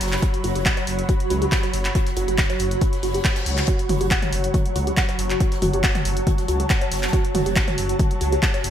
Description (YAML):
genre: driving peak-time techno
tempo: 139 BPM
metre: 4/4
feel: straight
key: F# minor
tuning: A4 = 441 Hz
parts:
  - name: dark detuned saw bass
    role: bass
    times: 0.0-8.7 s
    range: F#1 to C#2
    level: -26 LUFS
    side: equal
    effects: sidechain pumping
  - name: swarming drone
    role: drone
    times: 0.0-8.7 s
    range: F#3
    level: -32 LUFS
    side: right 2 dB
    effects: built-in reverb, phaser, sidechain pumping
  - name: open jazz drum kit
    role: drums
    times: 0.0-8.7 s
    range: hi-hat, snare drum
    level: -37 LUFS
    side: right 2 dB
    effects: none
  - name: punchy analog drum machine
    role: drums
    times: 0.0-8.7 s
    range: handclaps, hi-hat, toms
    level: -26 LUFS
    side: equal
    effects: sidechain pumping on hats, sidechain pumping on toms, gated reverb
  - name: ethereal airy pad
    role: texture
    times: 0.0-8.7 s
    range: F#4 to B5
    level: -27 LUFS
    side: right 1 dB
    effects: ensemble chorus, built-in reverb, phaser, sidechain pumping
  - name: woody wave-folded pluck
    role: riff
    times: 0.2-8.6 s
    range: F#4 to F#5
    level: -29 LUFS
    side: equal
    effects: tube saturation, wide subtle chorus, sidechain pumping, ping-pong delay
  - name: electronic kick drum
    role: drums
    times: 0.2-8.5 s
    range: none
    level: -22 LUFS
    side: equal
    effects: none
  - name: reverse cymbal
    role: sound effects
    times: 3.0-3.7 s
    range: none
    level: -34 LUFS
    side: left 8 dB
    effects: none
room: light reverb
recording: bright 1980s-style digital production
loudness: -19 LUFS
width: side -10 dB against mid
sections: 0.0-8.7 A section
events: reverse cymbal 3.0-3.7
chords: 0.0 F#m